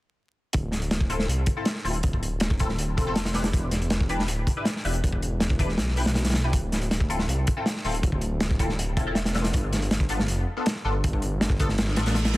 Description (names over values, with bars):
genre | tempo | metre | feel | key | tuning
drum and bass, jungle | 160 BPM | 4/4 | straight | D dorian | A4 = 444 Hz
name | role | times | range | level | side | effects
detuned saw bass | bass | 0.5-12.4 s | D1 to C2 | -27 LUFS | equal | tube saturation
crunchy breakbeat drum kit | drums | 0.5-12.4 s | hi-hat, kick drum, snare drum | -25 LUFS | equal | none
band-passed chord stab | stabs | 1.1-12.4 s | B3 to B4 | -32 LUFS | left 2 dB | phaser, ensemble chorus, dub echo
reverse cymbal | sound effects | 11.9-12.4 s | none | -34 LUFS | right 5 dB | none
room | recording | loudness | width
small room ambience | dense, heavily limited modern master, vinyl crackle | -23 LUFS | side -18 dB against mid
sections
0.5-12.4 A section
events
reverse cymbal 11.9-12.4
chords
0.5 Dm7; 3.5 Em7; 6.5 Dm7; 9.5 G7